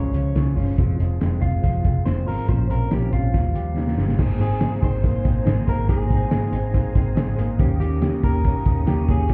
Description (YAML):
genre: jangly indie pop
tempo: 141 BPM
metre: 4/4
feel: straight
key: Ab major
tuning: A4 = 440 Hz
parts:
  - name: electric guitar through a small old amp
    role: melody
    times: 0.0-9.3 s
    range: F4 to Db5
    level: -33 LUFS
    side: equal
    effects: tape echo
  - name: fingerpicked plugged-in steel-string acoustic guitar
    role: accompaniment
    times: 0.0-9.3 s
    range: Bb2 to C5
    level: -32 LUFS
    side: equal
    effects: none
  - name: electric guitar through a small old amp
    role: arpeggios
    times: 0.0-9.3 s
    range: Eb3 to Ab4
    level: -34 LUFS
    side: equal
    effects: subtle chorus
  - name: vintage muted picked electric bass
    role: bass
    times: 0.0-9.3 s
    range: F1 to Eb2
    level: -24 LUFS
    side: equal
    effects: none
  - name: cloth-damped thuddy drum kit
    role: drums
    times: 0.1-9.3 s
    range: crash cymbal, hi-hat, kick drum, snare drum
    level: -25 LUFS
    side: equal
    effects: none
  - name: ensemble organ-string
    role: sustained chords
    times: 4.2-9.3 s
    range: C5 to Eb6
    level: -43 LUFS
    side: equal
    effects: ensemble chorus
room: little or no reverb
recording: heard muffled through a wall, club reverb, EQ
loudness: -21 LUFS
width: mono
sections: 0.0-4.2 A section; 4.2-9.3 B section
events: drum fill 3.8-4.2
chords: 0.0 Db; 0.8 Fm; 2.5 Bbmadd9; 3.3 Ebadd9; 4.2 Abadd9; 7.6 Eb7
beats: 0.35 | 0.78 1.21 1.63 2.06 | 2.49 2.91 3.34 3.77 | 4.19 4.62 5.04 5.47 | 5.90 6.32 6.75 7.17 | 7.60 8.02 8.45 8.88 | 9.30